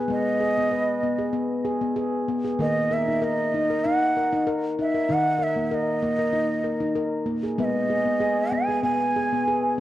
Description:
world meditative; 96 BPM; 4/4; straight; G# minor; A4 = 437 Hz
handpan; arpeggios; 0.0-9.8 s; D#3 to B4; -24 LUFS; left 2 dB
breathy bansuri; melody; 0.1-9.7 s; D#5 to G#5; -24 LUFS; right 2 dB
wet spring reverb, RT60 2.7 s; worn, warbling old tape, cassette tape, warbly pitch drift; -22 LUFS; side -14 dB against mid
0.0-9.8 A section
0.0 G#m; 2.6 D#5; 7.6 G#m
| 0.08 0.71 1.33 1.96 | 2.59 3.21 3.84 4.47 | 5.09 5.72 6.34 6.97 | 7.59 8.22 8.84 9.47

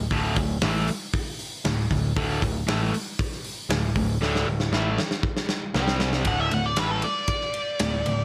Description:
hard rock; 117 BPM; 4/4; straight; A4 = 437 Hz
sludgy distorted guitar; riff; 0.0-8.2 s; D2 to C4; -28 LUFS; equal; overdrive
picked electric bass; bass; 0.0-8.2 s; D1 to C2; -31 LUFS; equal
big rock drum kit; drums; 0.1-8.2 s; hi-hat, kick drum, ride cymbal, snare drum; -30 LUFS; equal
nasal lead guitar with a parked wah; melody; 6.3-8.2 s; A4 to F#5; -29 LUFS; equal; overdrive, slapback echo
light reverb; -25 LUFS; mono
0.0-6.3 A section; 6.3-8.2 B section
drum fill 4.2-6.3; lead electric guitar solo 6.3-8.2
0.0 D5; 5.8 C5; 6.3 D5
| 0.11 0.62 1.14 1.65 | 2.16 2.67 3.19 3.70 | 4.21 4.72 5.24 5.75 | 6.26 6.78 7.29 7.80

